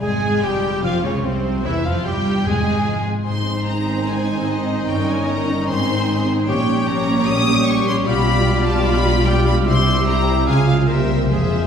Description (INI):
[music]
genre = classical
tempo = 149 BPM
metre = 4/4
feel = rubato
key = F minor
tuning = A4 = 439 Hz
[part]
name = warm symphonic violin section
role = melody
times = 0.0-11.7 s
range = C5 to Eb6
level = -25 LUFS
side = left 3 dB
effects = none
[part]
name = clear clarinet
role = second line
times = 0.0-11.7 s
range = C4 to Bb4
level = -26 LUFS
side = left 2 dB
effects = none
[part]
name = mellow cor anglais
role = second line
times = 0.0-11.7 s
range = C5 to Ab5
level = -29 LUFS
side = right 2 dB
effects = none
[part]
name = warm symphonic violin section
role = second line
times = 0.0-11.7 s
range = C4 to F5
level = -28 LUFS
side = left 2 dB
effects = none
[part]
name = warm studio viola section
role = accompaniment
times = 0.0-11.7 s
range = C3 to G4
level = -25 LUFS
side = right 1 dB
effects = none
[part]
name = mellow French horn section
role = sustained chords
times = 0.0-11.7 s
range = C3 to Ab4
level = -26 LUFS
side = equal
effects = none
[part]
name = concert harp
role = arpeggios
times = 0.0-11.7 s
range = E2 to Bb4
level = -24 LUFS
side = left 2 dB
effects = none
[part]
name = rich symphonic cello section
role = bass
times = 0.0-11.7 s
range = C2 to Db3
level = -24 LUFS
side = right 2 dB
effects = none
[part]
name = rich symphonic double bass section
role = bass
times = 0.0-11.7 s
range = E1 to Db2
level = -24 LUFS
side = right 1 dB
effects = none
[part]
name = timpani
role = percussion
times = 2.5-3.0, 11.3-11.7 s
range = F2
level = -27 LUFS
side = equal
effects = none
[sound]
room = wet scoring stage reverb, RT60 1.6 s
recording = heard from further back in the room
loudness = -16 LUFS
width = side -7 dB against mid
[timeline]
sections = 0.0-11.7 A section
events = timpani fill 11.3-11.7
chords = 0.0 Fm; 1.7 C/E; 2.5 Fm/Ab; 3.3 Ab; 4.9 Eb7/G; 5.7 Ab; 6.5 Gdim/Bb; 8.1 G7/B; 9.7 C; 10.5 Db; 10.9 C7